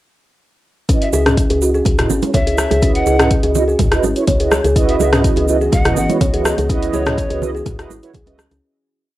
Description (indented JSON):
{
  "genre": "afro house",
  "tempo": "124 BPM",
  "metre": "4/4",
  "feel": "straight",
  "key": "C# minor",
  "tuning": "A4 = 440 Hz",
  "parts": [
    { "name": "kalimba", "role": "arpeggios", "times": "0.9-8.6 s", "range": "C#4 to C#5", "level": "-19 LUFS", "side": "equal", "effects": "sidechain pumping, cassette tape, analog delay" },
    { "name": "mellow synth brass", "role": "stabs", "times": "0.9-8.4 s", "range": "E4 to D#5", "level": "-21 LUFS", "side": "right 6 dB", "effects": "chorus, cassette tape, sidechain pumping, analog delay" },
    { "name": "deep house drum kit", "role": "drums", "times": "0.9-8.6 s", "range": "hi-hat, rim click, toms", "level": "-19 LUFS", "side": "left 1 dB", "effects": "cassette tape" },
    { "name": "electronic kick drum", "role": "drums", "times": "0.9-8.2 s", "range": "none", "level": "-17 LUFS", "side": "left 1 dB", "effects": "cassette tape" },
    { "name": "egg shaker", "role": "percussion", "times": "0.9-8.6 s", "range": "none", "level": "-31 LUFS", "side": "right 9 dB", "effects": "none" },
    { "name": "breathy bright large pan pipes", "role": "melody", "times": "1.0-7.4 s", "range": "C#5 to F#5", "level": "-24 LUFS", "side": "left 2 dB", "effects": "cassette tape, analog delay" },
    { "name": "woody FM bass", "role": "bass", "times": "1.1-8.6 s", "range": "G#1 to C#2", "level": "-20 LUFS", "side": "left 1 dB", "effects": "sidechain pumping" },
    { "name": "congas", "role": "percussion", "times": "1.1-8.6 s", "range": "none", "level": "-24 LUFS", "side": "right 8 dB", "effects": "none" },
    { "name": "dark analog pad", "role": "sustained chords", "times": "5.2-8.6 s", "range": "E3 to D#5", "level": "-25 LUFS", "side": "left 1 dB", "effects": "chorus, vintage 12-bit sampler grit, sidechain pumping, cassette tape" }
  ],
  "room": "moderate studio reverb, RT60 0.5 s",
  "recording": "home recording on cassette",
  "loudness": "-13 LUFS",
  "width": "side -15 dB against mid",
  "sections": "0.9-8.6 groove",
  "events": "filter sweep on analog polysynth 0.9-8.6; fade-out 6.1-8.6",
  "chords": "0.9 C#m11"
}